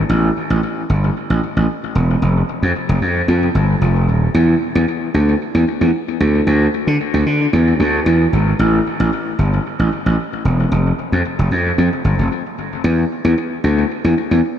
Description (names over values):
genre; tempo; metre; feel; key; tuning
funk; 113 BPM; 4/4; straight; unclear; A4 = 440 Hz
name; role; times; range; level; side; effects
gritty slap bass; solo; 0.0-14.4 s; D#1 to D3; -14 LUFS; equal; overdrive, ping-pong delay
room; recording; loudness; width
moderate plate reverb, RT60 2.8 s; dreamy mix soaked in reverb; -14 LUFS; side -9 dB against mid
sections
0.0-12.8 A section; 12.8-14.6 B section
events
stop 12.3-12.8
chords
none